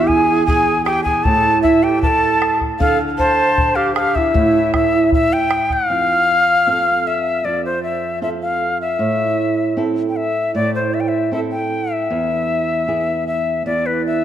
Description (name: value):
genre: andean folk, Andean ensemble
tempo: 77 BPM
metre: 2/4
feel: straight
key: unclear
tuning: A4 = 440 Hz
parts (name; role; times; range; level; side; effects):
- quena; melody; 0.0-14.2 s; B4 to A5; -17 LUFS; left 2 dB; none
- breathy bright large quena; second line; 0.0-5.3 s; E4 to C5; -19 LUFS; right 3 dB; none
- flamenco guitar; accompaniment; 0.0-14.2 s; E2 to A4; -20 LUFS; right 4 dB; none
- bombo; percussion; 0.1-5.9 s; none; -22 LUFS; left 1 dB; none
room: wet concert hall reverb, RT60 1.8 s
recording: none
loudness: -14 LUFS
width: side -10 dB against mid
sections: 0.0-5.9 A section; 5.9-14.2 B section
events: none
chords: 0.0 N.C.; 5.9 F; 9.0 Am; 12.1 E